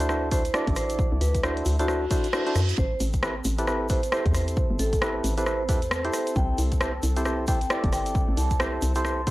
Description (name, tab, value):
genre	UK garage, two-step garage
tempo	134 BPM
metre	4/4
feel	swing 60% on 16ths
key	A minor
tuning	A4 = 437 Hz
part	warm analog pad	sustained chords	0.0-9.3 s	C4 to E5	-40 LUFS	right 1 dB	none
part	percussive organ stab	stabs	0.0-9.3 s	C4 to D5	-29 LUFS	right 1 dB	chorus
part	hollow knocking FM bass	bass	0.0-9.3 s	G1 to F#2	-27 LUFS	equal	none
part	house drum kit	drums	0.0-9.3 s	hi-hat, rim click	-30 LUFS	equal	none
part	egg shaker	percussion	0.0-9.3 s	none	-41 LUFS	left 1 dB	none
part	vibraphone with medium mallets	melody	0.3-9.3 s	F#4 to C6	-31 LUFS	equal	none
part	electronic kick drum	drums	0.3-9.3 s	none	-26 LUFS	equal	none
part	reverse cymbal	sound effects	2.1-2.8 s	none	-35 LUFS	right 5 dB	none
room	light reverb, digital ambience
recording	dry, gritty hardware recording, transformer saturation, cassette tape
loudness	-22 LUFS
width	side -18 dB against mid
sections	0.0-9.3 A section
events	reverse cymbal 2.1-2.8; kick drops out 2.3-2.8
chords	0.0 D9; 2.8 Am9; 6.1 C6